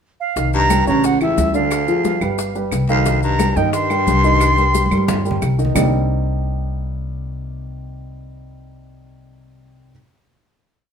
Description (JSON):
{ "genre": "Afro-Cuban jazz", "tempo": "178 BPM", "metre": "4/4", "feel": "straight", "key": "C minor", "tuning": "A4 = 438 Hz", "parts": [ { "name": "bright reedy concert flute", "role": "melody", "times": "0.2-5.4 s", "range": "E5 to C6", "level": "-19 LUFS", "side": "right 2 dB", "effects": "none" }, { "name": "dark baby grand piano", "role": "accompaniment", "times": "0.4-9.9 s", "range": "C3 to Eb5", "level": "-21 LUFS", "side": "right 2 dB", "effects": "none" }, { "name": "upright bass", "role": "bass", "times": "0.4-9.9 s", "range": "G1 to G2", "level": "-21 LUFS", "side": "left 1 dB", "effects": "none" }, { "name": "bongos", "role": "percussion", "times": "0.4-5.8 s", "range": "none", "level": "-28 LUFS", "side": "left 5 dB", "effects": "none" }, { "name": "congas", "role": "percussion", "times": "0.4-5.8 s", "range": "none", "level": "-24 LUFS", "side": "right 1 dB", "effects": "none" }, { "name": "maracas", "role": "percussion", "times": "0.4-5.8 s", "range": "none", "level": "-32 LUFS", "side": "left 7 dB", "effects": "none" }, { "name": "growling baritone saxophone", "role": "second line", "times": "0.5-5.4 s", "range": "C#2 to G2", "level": "-24 LUFS", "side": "left 6 dB", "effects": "none" }, { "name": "claves", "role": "percussion", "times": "0.7-5.8 s", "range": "none", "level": "-31 LUFS", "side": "right 5 dB", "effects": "none" } ], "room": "moderate studio reverb, RT60 0.8 s", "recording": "minimal, uncompressed stereo recording", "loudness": "-15 LUFS", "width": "side -7 dB against mid", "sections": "0.0-0.4 pickup bar; 0.4-5.8 A section; 5.8-8.4 final chord", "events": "drum fill 4.7-5.8", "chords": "0.4 Cm7; 1.0 A7; 1.7 Ddim; 2.4 Gaug; 3.1 Cm7; 5.8 Cm9" }